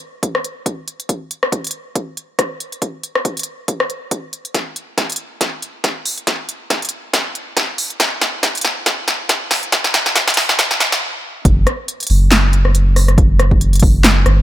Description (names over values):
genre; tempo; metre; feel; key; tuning
deep dubstep; 139 BPM; 4/4; swing 56% on 16ths, half-time; unclear; A4 = 440 Hz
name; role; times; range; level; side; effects
deep house drum kit; drums; 0.2-14.4 s; handclaps, hi-hat, rim click, snare drum; -16 LUFS; equal; high-pass filter on snare, high-pass filter on toms, high-pass filter on hats, high-pass filter on room
electronic kick drum; drums; 0.2-13.9 s; none; -17 LUFS; equal; high-pass filter on kick, high-pass filter on room
soft dub sub bass; bass; 11.4-14.4 s; F#1 to G1; -12 LUFS; equal; none
room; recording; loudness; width
light reverb; high-pass filter; -14 LUFS; side -14 dB against mid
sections
0.0-11.5 A section; 11.5-14.4 B section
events
build-up 0.0-11.5; filter sweep 0.0-11.5; drum fill 4.5-11.0; stop 11.0-11.5; drop 11.5-14.4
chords
none